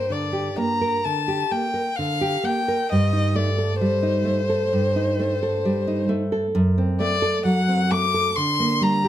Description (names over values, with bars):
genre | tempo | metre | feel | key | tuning
romantic duo for violin and classical guitar | 65 BPM | 4/4 | rubato | G minor | A4 = 441 Hz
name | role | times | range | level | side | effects
rich violin | melody | 0.0-9.1 s | C5 to D6 | -23 LUFS | left 3 dB | slapback echo
nylon-string guitar | accompaniment | 0.0-9.1 s | F#2 to Bb4 | -21 LUFS | right 1 dB | none
room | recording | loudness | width
light reverb | close, detailed microphones | -19 LUFS | side -11 dB against mid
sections
0.0-9.1 A section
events
none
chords
0.0 Gm; 2.9 Am7b5/G; 6.6 F#dim; 8.4 Gm/D